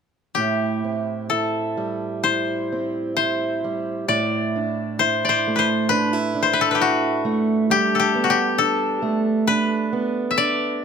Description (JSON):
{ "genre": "celtic folk, Celtic slow air", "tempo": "66 BPM", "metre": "4/4", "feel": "rubato", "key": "A dorian", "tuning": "A4 = 440 Hz", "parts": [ { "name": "koto", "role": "melody", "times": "0.3-10.8 s", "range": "F#4 to E5", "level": "-21 LUFS", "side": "left 5 dB", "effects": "none" }, { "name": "fingerpicked steel-string acoustic guitar", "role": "accompaniment", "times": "0.4-10.8 s", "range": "A2 to E4", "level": "-22 LUFS", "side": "right 4 dB", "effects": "none" } ], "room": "moderate recital hall reverb, RT60 1.4 s", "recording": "close, detailed microphones", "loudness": "-19 LUFS", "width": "side -6 dB against mid", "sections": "0.4-10.8 A section", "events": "none", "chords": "0.4 Am7; 4.1 Dadd9/A; 7.7 Gadd9" }